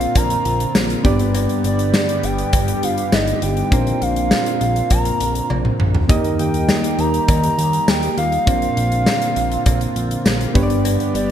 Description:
1980s-style pop; 101 BPM; 4/4; straight; A4 = 442 Hz
hollow clarinet-like synth lead; melody; 0.0-11.3 s; D5 to Bb5; -23 LUFS; right 1 dB; chorus
marimba with medium mallets; second line; 0.0-11.3 s; D4 to Bb4; -30 LUFS; left 1 dB; ping-pong delay
soft electric-piano-like synth keys; accompaniment; 0.0-11.3 s; G2 to Eb5; -22 LUFS; right 1 dB; chorus
phased analog pad; sustained chords; 0.0-11.3 s; D3 to G4; -27 LUFS; left 1 dB; phaser, chorus
fat analog bass; bass; 0.0-11.3 s; G1 to Eb2; -22 LUFS; equal
big rock drum kit; drums; 0.0-11.3 s; hi-hat, kick drum, snare drum, tambourine, toms; -19 LUFS; left 1 dB; gated reverb
cowbell; percussion; 0.2-11.0 s; -36 LUFS; left 3 dB
light reverb, small room ambience; bright 1980s-style digital production; -15 LUFS; side -10 dB against mid
0.0-11.3 A section
drum fill 5.5-6.1
0.0 Bbadd9; 1.0 G; 3.7 Bbadd9; 6.1 Eb; 8.5 Bbadd9; 10.6 G

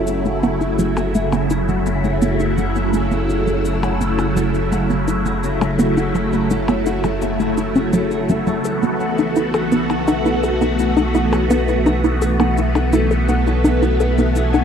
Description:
ambient, sequencer-driven space music; 84 BPM; 4/4; straight; F# minor; A4 = 440 Hz
phased string machine; sustained chords; 0.0-14.6 s; C#3 to G#5; -18 LUFS; equal; ensemble chorus, phaser
clean electric guitar; arpeggios; 0.0-14.6 s; E4 to F#5; -33 LUFS; moving between left 5 dB and right 3 dB
round analog bass; bass; 0.0-14.6 s; F#1 to B1; -22 LUFS; equal
cabasa and percussion blips; percussion; 0.1-14.6 s; -33 LUFS; left 3 dB; ping-pong delay
hollow square pluck; riff; 0.3-14.6 s; F#3 to A4; -21 LUFS; equal; chorus, ping-pong delay
wet huge ambient reverb, RT60 7.8 s; -15 LUFS; side -7 dB against mid
0.0-14.6 A section
filter sweep on synth arpeggio sound 0.0-14.6
0.0 F#m7; 8.6 B7sus4

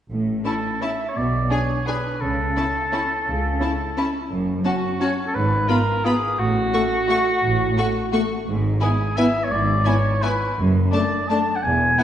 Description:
classical, orchestral ballroom waltz; 172 BPM; 3/4; uneven beats, rubato; A major; A4 = 440 Hz
rich studio cello section; bass; 0.1-11.9 s; E2 to C#3; -25 LUFS; right 1 dB
rich studio double bass section; bass; 0.1-11.9 s; E1 to C#2; -26 LUFS; right 1 dB
rich studio viola section; accompaniment; 0.4-12.0 s; A3 to D4; -26 LUFS; left 1 dB
rich studio violin section; melody; 0.5-12.0 s; G#5 to C#6; -33 LUFS; left 4 dB
rich studio violin section; second line; 0.5-12.0 s; D4 to G#4; -30 LUFS; left 3 dB
warm oboe; second line; 0.5-12.0 s; F#4 to A5; -23 LUFS; equal
wet scoring stage reverb, RT60 1.6 s; heard from further back in the room, nothing above 10.4 kHz; -19 LUFS; side -10 dB against mid
0.1-12.0 A section
0.1 A; 1.2 G#dim/B; 2.2 A/C#; 4.3 F#m; 5.3 Fdim/Ab (rootless); 6.4 F#m/A; 8.5 E/G#; 10.6 D/F#

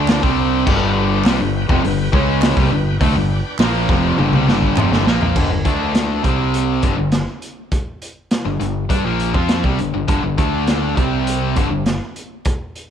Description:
classic rock; 102 BPM; 4/4; straight; G mixolydian; A4 = 436 Hz
bright tonewheel organ; sustained chords; 0.0-5.3 s; B3 to B5; -28 LUFS; equal; slow rotary speaker, overdrive
overdriven semi-hollow guitar; riff; 0.0-12.0 s; F2 to F4; -21 LUFS; right 12 dB
tight distorted guitar; riff; 0.0-11.9 s; F2 to F4; -21 LUFS; left 11 dB; distortion
growling fingered electric bass; bass; 0.0-12.0 s; F1 to G2; -22 LUFS; equal; overdrive
raw garage drum kit; drums; 0.1-12.9 s; crash cymbal, hi-hat, kick drum, snare drum, toms; -19 LUFS; equal
group handclap; percussion; 0.1-4.9 s; -32 LUFS; right 13 dB
light reverb, small room ambience; 1960s-style stereo with parts hard left and right, faint mains hum; -15 LUFS; side -8 dB against mid
0.0-5.4 A section; 5.4-12.9 B section
drum fill 4.2-5.4
0.0 G; 5.4 G5; 5.6 D5; 6.2 C5; 6.8 G5; 10.4 D5; 11.0 C5; 11.6 G5

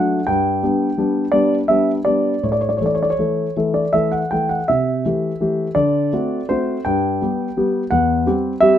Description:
classical-period piano sonatina; 55 BPM (dotted quarters); 6/8; uneven beats, rubato; G major from 4.7 s; A4 = 437 Hz
warm concert grand piano; solo; 0.0-8.8 s; E2 to G5; -16 LUFS; equal
light reverb; -16 LUFS; side -10 dB against mid
0.0-8.8 A section
0.3 G; 2.4 A5; 4.7 Am7/C; 5.8 D7; 6.9 G; 7.9 C/E

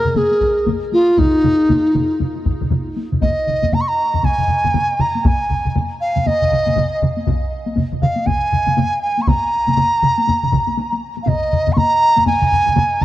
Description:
japanese traditional, taiko drum ensemble; 119 BPM; 4/4; swing 60% on 16ths; Eb suspended pentatonic; A4 = 440 Hz
mellow large dizi; melody; 0.0-13.0 s; Eb4 to Db6; -16 LUFS; right 1 dB
taiko ensemble; percussion; 0.1-12.9 s; -25 LUFS; left 2 dB
taiko ensemble; percussion; 0.1-13.0 s; -22 LUFS; left 2 dB
taiko ensemble; percussion; 0.1-13.0 s; -22 LUFS; right 2 dB
taiko ensemble; percussion; 0.4-12.4 s; -22 LUFS; equal
moderate huge ambient reverb, RT60 5.5 s; worn, warbling old tape, cassette tape, warbly pitch drift; -14 LUFS; side -14 dB against mid
0.0-3.2 A section; 3.2-13.0 B section
speeding up 0.0-13.0

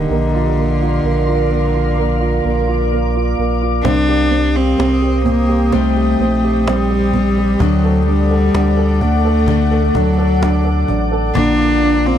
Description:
pop ballad; 64 BPM; 4/4; straight; A4 = 443 Hz
warm cello; melody; 0.0-12.2 s; D3 to D4; -17 LUFS; left 1 dB
warm baby grand piano; accompaniment; 0.0-12.2 s; Bb2 to A4; -21 LUFS; right 9 dB
glassy FM pad; sustained chords; 0.0-12.2 s; A4 to Eb6; -22 LUFS; left 2 dB; ensemble chorus, built-in reverb
saturated sub bass; bass; 0.0-12.2 s; A1 to D2; -18 LUFS; equal
picked steel-string acoustic guitar; arpeggios; 3.8-12.2 s; Bb2 to Bb4; -24 LUFS; left 15 dB
cajon; drums; 3.8-11.6 s; -24 LUFS; left 1 dB
little or no reverb; dry, close 1970s-style studio recording; -13 LUFS; side -10 dB against mid
0.0-3.9 A section; 3.9-12.2 B section
0.1 Bbadd9; 3.9 Cm; 7.6 D; 11.4 Bb

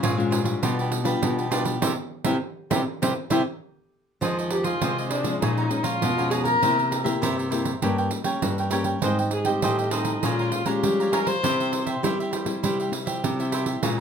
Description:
samba and choro; 100 BPM; 4/4; straight; A4 = 440 Hz
cavaquinho; accompaniment; 0.0-14.0 s; E4 to Bb5; -30 LUFS; right 4 dB
nylon-string guitar; accompaniment; 0.0-14.0 s; F2 to G4; -28 LUFS; left 5 dB
nylon-string guitar; bass; 0.0-14.0 s; G2 to G3; -28 LUFS; equal
pandeiro; percussion; 0.0-14.0 s; -28 LUFS; right 6 dB
dark viola; melody; 4.5-11.9 s; D4 to C5; -25 LUFS; left 1 dB
light reverb; close, detailed microphones; -22 LUFS; side -7 dB against mid
0.0-4.2 A section; 4.2-14.0 B section
band accent 1.8-4.2
0.0 Db; 0.6 G7/B; 1.8 C; 4.2 Fm7; 5.4 Bbm7; 6.6 C7; 7.8 Gdim; 9.0 Abmaj7; 10.2 Bbm7; 11.4 C

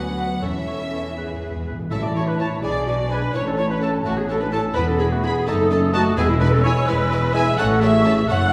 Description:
quick classical-period movement for symphony orchestra; 85 BPM (dotted quarters); 6/8; straight; A major; A4 = 440 Hz
clear studio violin section; melody; 0.0-8.5 s; E5 to B5; -40 LUFS; equal
clear clarinet; second line; 0.0-8.5 s; G#3 to A4; -30 LUFS; equal
clear studio violin section; second line; 0.0-8.4 s; C#4 to D#5; -37 LUFS; equal
mellow hollow large flute ensemble; second line; 0.0-8.5 s; E5 to E6; -33 LUFS; equal
warm oboe; second line; 0.0-8.5 s; E4 to F#5; -32 LUFS; equal
dark studio viola section; accompaniment; 0.0-8.5 s; E3 to F#5; -27 LUFS; equal
mellow bassoon; accompaniment; 0.0-8.5 s; G#3 to E4; -32 LUFS; equal
mellow French horn section; sustained chords; 0.0-8.1 s; E3 to A4; -36 LUFS; equal
rich studio cello section; bass; 0.0-8.5 s; E2 to F#3; -29 LUFS; equal
rich studio double bass section; bass; 0.0-8.5 s; E1 to E2; -27 LUFS; equal
timpani; percussion; 0.4-6.8 s; E2 to A2; -31 LUFS; equal
mellow trumpet section; stabs; 2.4-8.1 s; G#5 to B5; -32 LUFS; equal
wet recital hall reverb, RT60 1.4 s; recorded in a church or concert hall; -20 LUFS; mono
0.0-1.9 A section; 1.9-8.5 B section
timpani fill 1.2-1.9
0.4 A/E; 1.2 E; 1.9 A; 2.6 G#dim/B; 3.4 A; 4.8 E5; 5.5 D#dim/F#; 6.2 E; 7.6 A

